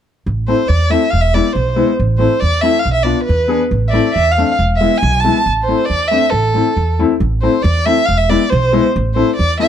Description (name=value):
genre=klezmer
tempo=138 BPM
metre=2/4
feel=straight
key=A harmonic minor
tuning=A4 = 439 Hz
part: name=upright bass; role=bass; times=0.3-9.7 s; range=E1 to E2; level=-16 LUFS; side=right 1 dB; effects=none
part: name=dark violin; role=melody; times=0.5-9.7 s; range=A4 to A5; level=-16 LUFS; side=right 2 dB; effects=plate reverb
part: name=clear upright piano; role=accompaniment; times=0.5-9.7 s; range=G#3 to G#4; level=-17 LUFS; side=left 6 dB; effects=none
room=light reverb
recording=dark, warm production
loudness=-12 LUFS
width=side -9 dB against mid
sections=0.3-7.2 A section; 7.2-9.7 A section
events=none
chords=0.3 Am; 1.1 E; 2.0 Am; 2.9 Bdim; 3.7 Am; 4.6 E; 5.5 Am; 8.1 E; 8.9 Am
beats=| 0.26 0.69 | 1.12 1.56 | 1.99 2.42 | 2.86 3.29 | 3.73 4.16 | 4.60 5.03 | 5.47 5.90 | 6.34 6.77 | 7.21 7.64 | 8.08 8.51 | 8.95 9.38